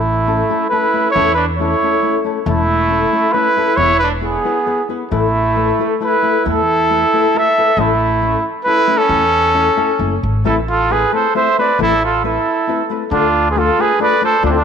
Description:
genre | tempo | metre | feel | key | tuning
mexican folk, mariachi | 136 BPM | 3/4 | straight | A major, A harmonic minor from 10.4 s | A4 = 440 Hz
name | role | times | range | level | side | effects
warm trumpet | melody | 0.0-14.6 s | C4 to E5 | -15 LUFS | equal | none
clear trumpet | second line | 0.0-14.6 s | A3 to E5 | -20 LUFS | right 10 dB | none
upright bass | bass | 0.0-14.6 s | E1 to E2 | -20 LUFS | equal | none
nylon-string guitar | accompaniment | 0.3-14.6 s | A2 to B4 | -21 LUFS | left 11 dB | none
room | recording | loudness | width
wet echo chamber reverb, RT60 2.3 s | 1960s-style stereo with parts hard left and right | -12 LUFS | side -7 dB against mid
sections
0.0-10.4 A section; 10.4-14.6 B section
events
none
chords
0.0 A; 2.5 A/E; 3.8 E; 5.1 Asus2; 7.8 A; 10.4 Amadd9; 13.1 Dm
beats
0.28 0.72 | 1.16 1.59 2.03 | 2.47 2.91 3.34 | 3.78 4.22 4.67 | 5.12 5.57 6.01 | 6.46 6.90 7.34 | 7.77 8.21 8.65 | 9.09 9.54 9.99 | 10.45 10.89 11.34 | 11.79 12.23 12.67 | 13.11 13.55 13.99 | 14.43

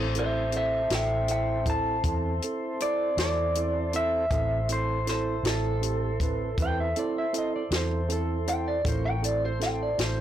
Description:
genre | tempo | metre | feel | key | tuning
slow blues | 53 BPM (dotted quarters) | 12/8 | straight | A minor | A4 = 441 Hz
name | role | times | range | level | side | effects
bright tine electric piano | accompaniment | 0.0-10.2 s | C4 to B4 | -34 LUFS | right 6 dB | none
mellow tonewheel organ | sustained chords | 0.0-10.2 s | C4 to C#5 | -35 LUFS | left 1 dB | slow rotary speaker
vintage muted fingered electric bass | bass | 0.0-10.2 s | A1 to E2 | -30 LUFS | equal | tube saturation
compact cocktail drum kit | drums | 0.1-10.2 s | hi-hat, kick drum, snare drum | -31 LUFS | left 1 dB | soft clipping on snare
electric guitar through a small old amp | melody | 0.2-10.2 s | A4 to A5 | -28 LUFS | equal | none
clean lap steel guitar | second line | 6.6-8.5 s | A4 to G5 | -31 LUFS | right 1 dB | none
room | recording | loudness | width
light reverb | blown-out, overdriven recording, overdrive | -25 LUFS | side -11 dB against mid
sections
0.0-10.2 A section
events
none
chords
0.0 Am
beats
0.90 2.04 3.17 | 4.31 5.44 6.58 7.71 | 8.85 9.99

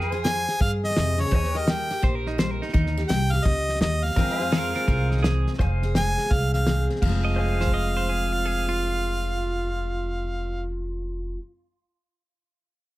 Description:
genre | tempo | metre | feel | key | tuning
honky-tonk and classic country | 168 BPM | 4/4 | swing 64% on 8ths | F minor | A4 = 440 Hz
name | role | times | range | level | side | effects
clean electric guitar | second line | 0.0-11.3 s | Eb4 to Eb5 | -32 LUFS | right 4 dB | spring reverb
picked steel-string acoustic guitar | accompaniment | 0.0-11.4 s | F2 to Ab4 | -30 LUFS | left 2 dB | none
pedal steel guitar | sustained chords | 0.0-10.6 s | Bb4 to Ab5 | -36 LUFS | left 1 dB | none
upright bass | bass | 0.0-11.3 s | F1 to G2 | -26 LUFS | equal | none
damped 70s drum kit | drums | 0.0-7.7 s | crash cymbal, hi-hat, kick drum, snare drum | -26 LUFS | equal | none
bright harmonica | melody | 0.2-10.6 s | Db5 to Ab5 | -28 LUFS | right 1 dB | none
room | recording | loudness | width
little or no reverb | close, detailed microphones | -22 LUFS | side -17 dB against mid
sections
0.0-5.6 A section; 5.6-7.0 B section; 7.0-9.9 C section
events
none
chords
0.0 Fm; 1.3 Eb; 4.2 Fm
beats
0.25 0.60 0.96 | 1.32 1.67 2.03 2.39 | 2.74 3.10 3.46 3.81 | 4.17 4.53 4.88 5.24 | 5.60 5.95 6.31 6.67 | 7.02 7.38 7.74 8.10 | 8.45 8.81 9.17 9.53

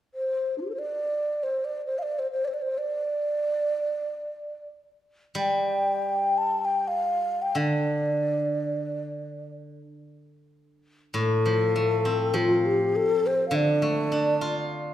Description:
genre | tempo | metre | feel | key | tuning
chinese traditional, Chinese chamber ensemble | free time | none | none | D yu mode | A4 = 444 Hz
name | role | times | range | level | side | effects
breathy mellow low xiao | melody | 0.1-14.7 s | D4 to A5 | -25 LUFS | left 1 dB | none
steel-string zither | accompaniment | 5.3-14.9 s | A2 to F4 | -27 LUFS | right 1 dB | none
room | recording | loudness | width
wet recital hall reverb, RT60 1.4 s | none | -23 LUFS | side -12 dB against mid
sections
0.0-11.2 A section; 11.2-14.9 B section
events
none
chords
none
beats
free time

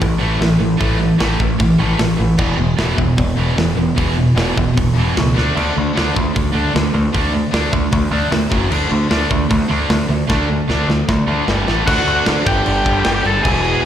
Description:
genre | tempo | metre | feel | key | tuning
punk rock | 152 BPM | 4/4 | straight | unclear | A4 = 440 Hz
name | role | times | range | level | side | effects
distorted electric guitar | riff | 0.0-13.9 s | E2 to D4 | -19 LUFS | right 7 dB | overdrive, slapback echo
overdriven electric guitar | riff | 0.0-13.9 s | E2 to D4 | -21 LUFS | left 8 dB | slapback echo
growling picked electric bass | bass | 0.0-13.7 s | E1 to D2 | -19 LUFS | equal | overdrive
tight metal drum kit | drums | 0.0-13.7 s | crash cymbal, hi-hat, kick drum, snare drum | -21 LUFS | equal | none
biting lead guitar | melody | 11.9-13.8 s | F#4 to A5 | -18 LUFS | left 1 dB | overdrive, slapback echo
room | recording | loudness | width
studio reverb | live gig heard through the venue's PA, recital hall reverb | -14 LUFS | side -10 dB against mid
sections
0.0-11.9 A section; 11.9-13.9 B section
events
drum fill 5.4, 10.3-11.9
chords
0.0 A5; 2.4 E5; 5.4 D5; 8.5 F#5; 8.7 D5; 11.5 G5; 11.7 A5; 11.9 D; 12.5 G5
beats
0.01 0.41 | 0.81 1.20 1.60 1.99 | 2.39 2.79 3.18 3.58 | 3.97 4.37 4.76 5.16 | 5.55 5.95 6.34 6.74 | 7.13 7.53 7.92 8.32 | 8.72 9.11 9.51 9.90 | 10.30 10.69 11.09 11.48 | 11.88 12.27 12.66 13.06 | 13.45 13.84

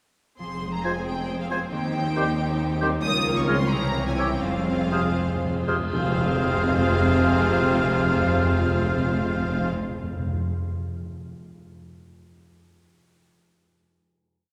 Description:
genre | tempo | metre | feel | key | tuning
classical, dramatic, fast romantic movement for symphony orchestra | 77-92 BPM (dotted quarters) | 6/8 | straight | F minor | A4 = 440 Hz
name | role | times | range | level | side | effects
warm symphonic violin section | melody | 0.4-9.7 s | F5 to Eb6 | -34 LUFS | equal | none
clear symphonic violin section | second line | 0.4-9.7 s | G4 to Db5 | -38 LUFS | equal | none
clear symphonic viola section | accompaniment | 0.4-9.7 s | Bb3 to Ab4 | -33 LUFS | equal | none
concert harp | arpeggios | 0.4-10.5 s | C3 to F5 | -34 LUFS | equal | none
clear symphonic double bass section | bass | 0.4-9.7 s | F1 to Eb2 | -34 LUFS | equal | none
rich symphonic cello section | bass | 0.4-9.7 s | C2 to F2 | -34 LUFS | equal | none
bright clarinet | second line | 0.8-9.7 s | F4 to Bb4 | -36 LUFS | equal | none
mellow hollow concert flute | second line | 0.8-9.7 s | E6 to Ab6 | -34 LUFS | equal | none
dark French horn section | sustained chords | 0.8-9.7 s | E3 to Db4 | -33 LUFS | equal | none
warm oboe | second line | 0.9-9.7 s | C5 to Db5 | -38 LUFS | equal | none
warm bassoon | accompaniment | 0.9-9.7 s | C3 to F3 | -36 LUFS | equal | none
cymbal swell and tam-tam | percussion | 3.0-7.9 s | none | -39 LUFS | equal | none
timpani | percussion | 4.4-10.4 s | F2 | -29 LUFS | equal | none
room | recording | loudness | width
wet church reverb, RT60 3.3 s | recorded in a church or concert hall | -24 LUFS | mono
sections
0.4-5.9 A section; 5.9-8.9 final chord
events
slowing down 2.4-5.9; timpani fill 4.4-5.9; band accent 5.9-6.4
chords
0.4 Fm; 1.7 Cm/Eb; 3.0 Bbm/Db; 3.7 C7b9; 4.4 Fm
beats
| 0.40 1.07 | 1.73 2.38 | 3.04 3.72 | 4.43 5.17 | 5.93 6.69 | 7.44 8.19

